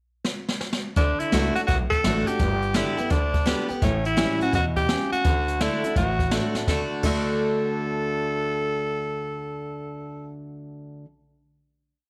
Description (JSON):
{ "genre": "rockabilly", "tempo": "168 BPM", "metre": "4/4", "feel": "swing 65% on 8ths", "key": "D major", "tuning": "A4 = 437 Hz", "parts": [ { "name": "jazz brush drum kit", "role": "drums", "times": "0.2-7.2 s", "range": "crash cymbal, hi-hat, kick drum, snare drum", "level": "-29 LUFS", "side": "equal", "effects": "none" }, { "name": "raspy tenor saxophone", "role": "melody", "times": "1.0-10.3 s", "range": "C#4 to A4", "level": "-29 LUFS", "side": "equal", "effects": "none" }, { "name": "picked steel-string acoustic guitar", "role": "accompaniment", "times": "1.0-11.1 s", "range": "G2 to G4", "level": "-30 LUFS", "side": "equal", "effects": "none" }, { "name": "upright bass", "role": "bass", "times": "1.0-11.0 s", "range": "G1 to E2", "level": "-30 LUFS", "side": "equal", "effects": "none" } ], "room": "light reverb, studio reverb", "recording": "faint mains hum", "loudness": "-24 LUFS", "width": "mono", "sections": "0.0-1.0 pickup bar; 1.0-6.7 A section; 6.7-9.5 final chord", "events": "drum fill 0.3-1.0, 6.5", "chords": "0.0 N.C.; 1.0 D; 2.4 G; 3.8 A7; 5.2 D", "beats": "0.25 0.61 | 0.97 1.33 1.68 2.04 | 2.40 2.75 3.11 3.47 | 3.82 4.18 4.54 4.89 | 5.25 5.60 5.96 6.32 | 6.68 7.03 7.39 7.75 | 8.11 8.46 8.82 9.18" }